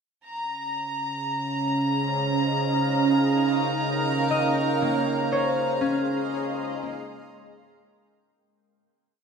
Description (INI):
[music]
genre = ambient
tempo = 59 BPM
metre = 4/4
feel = straight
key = Db lydian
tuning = A4 = 440 Hz
[part]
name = granular cloud pad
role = sustained chords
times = 1.7-8.4 s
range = Ab3 to C6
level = -28 LUFS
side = right 3 dB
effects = built-in reverb
[part]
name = analog drone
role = drone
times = 1.0-8.5 s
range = Db3 to Db4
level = -27 LUFS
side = right 2 dB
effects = chorus
[part]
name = clear chamber violin section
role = texture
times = 0.3-8.4 s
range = Bb5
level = -29 LUFS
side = left 2 dB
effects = none
[part]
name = concert harp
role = arpeggios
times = 4.3-9.2 s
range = Bb3 to Eb5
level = -27 LUFS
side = left 3 dB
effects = ping-pong delay
[sound]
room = wet concert hall reverb, RT60 1.9 s, small room ambience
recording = none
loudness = -22 LUFS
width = side -6 dB against mid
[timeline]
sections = 0.3-8.4 A section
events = fade-in on ambient pad 0.3-8.4; fade-out 4.3-8.4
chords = 0.3 Dbmaj7; 2.3 Eb7; 4.3 Dbmaj7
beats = | 0.27 1.29 2.31 3.31 | 4.32 5.32 6.33 7.34